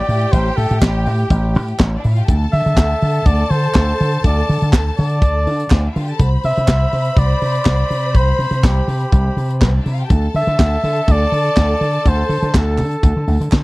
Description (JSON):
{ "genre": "disco", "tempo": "123 BPM", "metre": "4/4", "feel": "straight", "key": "unclear", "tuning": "A4 = 440 Hz", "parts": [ { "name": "warm flugelhorn", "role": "melody", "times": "0.0-13.6 s", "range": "G4 to E5", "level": "-21 LUFS", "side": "equal", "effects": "none" }, { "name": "clear studio string section", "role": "second line", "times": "0.0-13.6 s", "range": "B3 to B5", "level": "-25 LUFS", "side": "left 1 dB", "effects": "none" }, { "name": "slap bass with an envelope filter", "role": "bass", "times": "0.1-13.6 s", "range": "A1 to D3", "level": "-16 LUFS", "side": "equal", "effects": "none" }, { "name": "tight funk drum kit", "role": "drums", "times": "0.1-13.6 s", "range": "handclaps, hi-hat, kick drum, snare drum", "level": "-14 LUFS", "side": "equal", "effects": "none" }, { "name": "group handclap", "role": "percussion", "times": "0.8-13.6 s", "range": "none", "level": "-29 LUFS", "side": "right 8 dB", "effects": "none" } ], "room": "little or no reverb", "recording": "dry, close 1970s-style studio recording", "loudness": "-13 LUFS", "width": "side -21 dB against mid", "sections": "0.0-13.6 A section", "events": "none", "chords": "0.0 A5; 2.3 D7(no3); 6.2 Cmaj7; 10.1 D5", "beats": "| 0.33 0.82 1.30 1.79 | 2.28 2.77 3.26 3.75 | 4.24 4.73 5.21 5.70 | 6.19 6.68 7.17 7.66 | 8.15 8.64 9.13 9.62 | 10.10 10.59 11.08 11.57 | 12.06 12.55 13.04 13.53" }